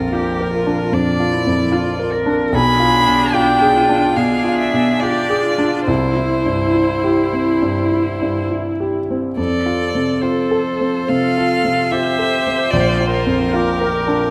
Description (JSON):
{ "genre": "classical, slow romantic movement for piano quartet", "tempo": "71 BPM", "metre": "4/4", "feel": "uneven beats, rubato", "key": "F major", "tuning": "A4 = 440 Hz", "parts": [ { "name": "rich violin", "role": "melody", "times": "0.0-14.3 s", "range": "Bb4 to B5", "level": "-22 LUFS", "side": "equal", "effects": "none" }, { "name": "warm cello", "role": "second line", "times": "0.0-14.3 s", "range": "D4 to Bb4", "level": "-26 LUFS", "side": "equal", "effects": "none" }, { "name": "clear concert grand piano", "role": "accompaniment", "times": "0.0-14.3 s", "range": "Bb1 to Bb4", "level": "-20 LUFS", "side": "equal", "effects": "none" }, { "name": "rich viola", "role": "accompaniment", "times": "0.1-14.3 s", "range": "D4 to C5", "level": "-25 LUFS", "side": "equal", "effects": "none" } ], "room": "moderate concert hall reverb, RT60 2.1 s", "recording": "none", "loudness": "-17 LUFS", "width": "mono", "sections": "0.0-14.3 A section", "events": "none", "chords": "0.0 Bb; 2.5 Bdim7; 5.9 C; 9.4 F; 12.7 Bb", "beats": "0.14 0.94 1.74 | 2.54 3.34 4.17 5.02 | 5.88 6.75 7.63 8.52 | 9.38 10.21 11.09 11.92 | 12.73 13.54" }